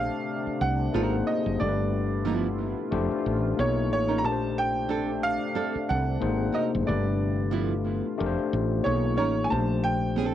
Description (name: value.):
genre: R&B.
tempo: 91 BPM.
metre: 4/4.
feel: swing 57% on 16ths.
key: unclear.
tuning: A4 = 440 Hz.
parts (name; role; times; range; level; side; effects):
bright baby grand piano; melody; 0.0-10.3 s; C#5 to A#5; -30 LUFS; right 3 dB; cassette tape.
overdriven tine electric piano; accompaniment; 0.0-10.3 s; A3 to C#5; -29 LUFS; left 7 dB; cassette tape.
deep dark ambient pad; sustained chords; 0.0-10.3 s; C3 to F4; -35 LUFS; right 1 dB; chorus, built-in reverb, cassette tape.
woody fretless electric bass; bass; 0.0-10.3 s; F1 to C2; -29 LUFS; right 1 dB; none.
nylon-string guitar; second line; 0.9-10.3 s; F3 to Bb4; -32 LUFS; right 8 dB; cassette tape, analog delay.
room: light reverb.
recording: home recording on cassette.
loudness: -24 LUFS.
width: side -11 dB against mid.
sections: 0.0-10.3 A section.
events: none.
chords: 0.0 Bbmaj9 (rootless); 0.9 Ab9; 1.6 G13; 2.9 F7; 3.6 Bmaj9; 4.2 Bbmaj9; 6.2 Ab9; 6.9 G13; 8.2 F7; 8.8 Bmaj9; 9.5 Bbmaj9.